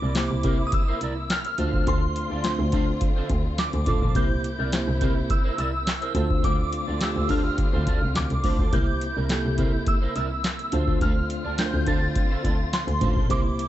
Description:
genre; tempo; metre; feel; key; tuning
early-eighties boogie funk; 105 BPM; 4/4; straight; D minor; A4 = 440 Hz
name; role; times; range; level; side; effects
shimmering bell with halo; melody; 0.0-13.7 s; C6 to A6; -30 LUFS; equal; ensemble chorus, slapback echo
warm studio string section; sustained chords; 0.0-13.7 s; C3 to F4; -35 LUFS; left 2 dB; none
electric guitar at the edge of break-up; riff; 0.0-13.6 s; E4 to D5; -35 LUFS; right 5 dB; ensemble chorus
bright double bass; bass; 0.0-13.5 s; A1 to D3; -27 LUFS; equal; none
booming analog drum machine; drums; 0.1-13.7 s; handclaps, hi-hat, kick drum, snare drum; -25 LUFS; equal; none
mellow tine electric piano; accompaniment; 0.2-13.6 s; A3 to C5; -31 LUFS; equal; slow stereo tremolo
room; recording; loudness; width
little or no reverb; nothing above 8.0 kHz; -22 LUFS; side -13 dB against mid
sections
0.0-13.7 A section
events
none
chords
0.0 C7; 1.6 Dm7; 4.2 C7; 6.2 Dm7; 8.7 C7; 10.7 Dm7

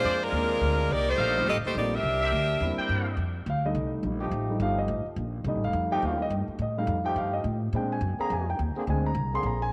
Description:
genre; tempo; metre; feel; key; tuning
jazz; 211 BPM; 4/4; swing 61% on 8ths; F mixolydian; A4 = 439 Hz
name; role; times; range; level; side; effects
bright saxophone section; melody; 0.0-2.9 s; Ab3 to E5; -29 LUFS; equal; tape echo
warm concert grand piano; accompaniment; 0.0-9.7 s; G3 to C6; -33 LUFS; equal; none
warm trumpet section; stabs; 0.0-3.2 s; G4 to G5; -36 LUFS; equal; none
upright bass; bass; 0.0-9.7 s; Eb1 to Bb2; -32 LUFS; equal; none
warm trombone section; sustained chords; 4.2-9.7 s; D3 to Ab4; -37 LUFS; equal; none
room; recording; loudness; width
moderate echo chamber reverb, RT60 2.6 s; none; -28 LUFS; mono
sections
0.0-3.2 A section; 3.2-9.7 B section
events
grand piano solo 3.2-9.7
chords
0.0 Bb9; 0.9 F9; 2.0 C9; 3.2 F9; 7.7 Bb9

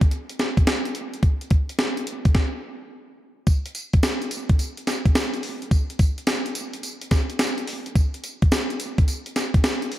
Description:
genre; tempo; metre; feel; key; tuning
R&B; 107 BPM; 4/4; swing 66% on 16ths; none; none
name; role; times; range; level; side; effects
clean 12-bit digital drum machine; drums; 0.0-10.0 s; hi-hat, kick drum, snare drum, tambourine; -20 LUFS; equal; none
room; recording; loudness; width
moderate plate reverb, RT60 2.2 s; none; -20 LUFS; side -14 dB against mid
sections
0.0-3.5 A section; 3.5-10.0 B section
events
stop 2.3-3.5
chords
none

